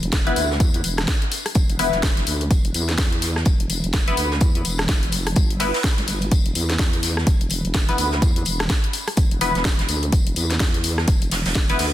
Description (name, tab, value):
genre	bass house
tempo	126 BPM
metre	4/4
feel	swing 60% on 16ths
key	E phrygian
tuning	A4 = 440 Hz
part	vowel-sweep wobble bass	bass	0.0-11.9 s	E1 to E2	-24 LUFS	equal	chorus, sidechain pumping
part	house drum kit	drums	0.0-11.9 s	hi-hat, rim click, snare drum	-25 LUFS	left 1 dB	overdrive, studio reverb
part	electronic kick drum	drums	0.1-11.7 s	none	-19 LUFS	equal	overdrive, studio reverb
part	vintage brush drum kit	drums	0.1-11.9 s	hi-hat, snare drum, tambourine	-30 LUFS	left 1 dB	sidechain pumping on hats, high-pass filter on hats, studio reverb, high-pass filter on snare, sidechain pumping on perc, high-pass filter on perc, high-pass filter on room
part	band-passed chord stab	stabs	0.3-11.9 s	B3 to B4	-25 LUFS	left 2 dB	phaser, sidechain pumping, dub echo
room	light reverb, studio reverb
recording	dense, heavily limited modern master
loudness	-18 LUFS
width	side -13 dB against mid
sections	0.0-11.9 A section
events	none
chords	0.0 E5